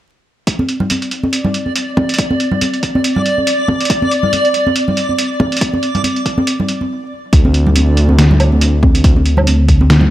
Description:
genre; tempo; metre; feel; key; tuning
deep dubstep; 140 BPM; 4/4; swing 56% on 16ths, half-time; unclear; A4 = 440 Hz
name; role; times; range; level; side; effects
electronic kick drum; drums; 0.5-9.8 s; none; -14 LUFS; equal; overdrive, high-pass filter on kick, high-pass filter on room
trip hop sampler-style drum kit; drums; 0.5-10.0 s; hi-hat, snare drum, woodblock; -17 LUFS; right 1 dB; overdrive
backwards swelling texture; texture; 1.4-6.9 s; D5; -19 LUFS; equal; built-in reverb
congas; percussion; 0.6-10.1 s; none; -17 LUFS; equal; dub echo
dark detuned saw bass; bass; 7.3-10.1 s; D2; -11 LUFS; equal; none
room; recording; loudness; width
light reverb; vinyl crackle; -11 LUFS; side -13 dB against mid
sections
0.5-7.3 A section; 7.3-10.1 B section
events
stop 6.9-7.3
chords
none

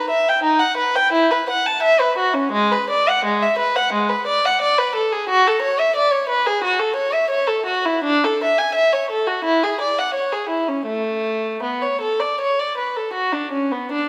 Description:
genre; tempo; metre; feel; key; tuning
classical, baroque-style suite movement for unaccompanied violin; 77-90 BPM; 4/4; rubato; A major; A4 = 440 Hz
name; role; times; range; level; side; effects
dark violin; solo; 0.0-14.1 s; G#3 to A5; -19 LUFS; equal; none
room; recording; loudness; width
moderate scoring stage reverb, RT60 1.5 s; none; -19 LUFS; mono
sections
0.0-13.9 A section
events
none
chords
none

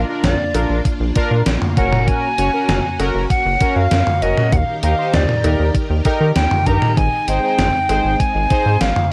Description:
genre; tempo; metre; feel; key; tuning
synth-pop; 98 BPM; 4/4; straight; unclear; A4 = 440 Hz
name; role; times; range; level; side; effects
analog synth brass; accompaniment; 0.0-8.8 s; Db4 to Db5; -24 LUFS; equal; chorus
string machine, full ensemble; sustained chords; 0.0-9.1 s; Eb3 to Bb4; -29 LUFS; equal; ensemble chorus
rubbery square bass; bass; 0.0-8.9 s; Gb1 to Eb3; -21 LUFS; equal; none
downlifter; sound effects; 0.0-2.1 s; none; barely audible; none; none
alto recorder; melody; 0.2-9.1 s; D5 to Bb5; -22 LUFS; equal; none
gated 80s digital drum machine; drums; 0.2-9.1 s; cowbell, hi-hat, kick drum, snare drum, toms; -21 LUFS; equal; gated reverb, gated reverb snare, overdrive
room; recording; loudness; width
light reverb; worn, warbling old tape, cassette tape, warbly pitch drift; -17 LUFS; mono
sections
0.0-9.1 A section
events
none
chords
0.0 Bb; 1.8 Gb; 4.5 Eb; 7.0 Ab

